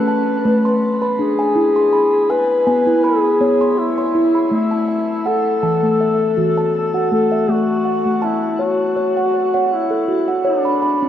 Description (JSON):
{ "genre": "world meditative, meditative tuned percussion", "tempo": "81 BPM", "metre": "4/4", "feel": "swing 54% on 16ths", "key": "A major", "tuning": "A4 = 440 Hz", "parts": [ { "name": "dark duduk", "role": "melody", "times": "0.0-11.1 s", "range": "D4 to B4", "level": "-18 LUFS", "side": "left 3 dB", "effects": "cassette tape, shimmer reverb, tape echo" }, { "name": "steel tongue drum", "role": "arpeggios", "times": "0.0-11.1 s", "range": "E3 to C6", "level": "-17 LUFS", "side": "right 2 dB", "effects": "cassette tape, shimmer reverb, tape echo" } ], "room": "wet spring reverb, RT60 2.5 s", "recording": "home recording on cassette", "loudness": "-14 LUFS", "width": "side -10 dB against mid", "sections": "0.0-7.5 A section; 7.5-11.1 B section", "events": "none", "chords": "0.0 D5; 1.6 E; 4.5 A5; 7.5 A; 10.5 D", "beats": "0.08 0.82 | 1.56 2.30 3.04 3.78 | 4.52 5.26 6.00 6.74 | 7.49 8.23 8.97 9.71 | 10.45" }